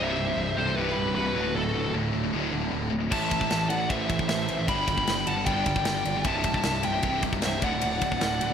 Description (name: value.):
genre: heavy metal.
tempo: 153 BPM.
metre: 4/4.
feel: straight.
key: unclear.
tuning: A4 = 439 Hz.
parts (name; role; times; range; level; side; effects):
high-gain lead guitar; melody; 0.0-8.5 s; A4 to B5; -29 LUFS; equal; distortion, ping-pong delay.
bluesy overdriven lead guitar; second line; 0.0-8.5 s; F#4 to G5; -36 LUFS; right 3 dB; distortion.
heavy high-gain guitar; riff; 0.0-8.5 s; C2 to A3; -33 LUFS; left 9 dB; distortion.
sludgy distorted guitar; riff; 0.0-8.5 s; C2 to A3; -33 LUFS; right 9 dB; overdrive.
tight distorted guitar; riff; 0.0-8.5 s; C2 to A3; -33 LUFS; equal; distortion, slapback echo.
fuzz picked electric bass; bass; 0.0-8.5 s; C1 to A1; -33 LUFS; equal; overdrive.
tight metal drum kit; drums; 3.1-8.5 s; crash cymbal, kick drum, ride cymbal, snare drum; -30 LUFS; equal; none.
room: moderate lush hall reverb, RT60 1.6 s, small room ambience.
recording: big arena sound.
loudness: -24 LUFS.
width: side -8 dB against mid.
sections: 0.0-8.5 A section.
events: none.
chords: 0.0 C; 1.4 D; 3.1 Am; 4.7 G; 6.3 C; 7.6 D.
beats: 0.38 0.77 1.16 | 1.55 1.95 2.34 2.73 | 3.12 3.51 3.90 4.30 | 4.69 5.08 5.47 5.87 | 6.26 6.65 7.04 7.43 | 7.83 8.22.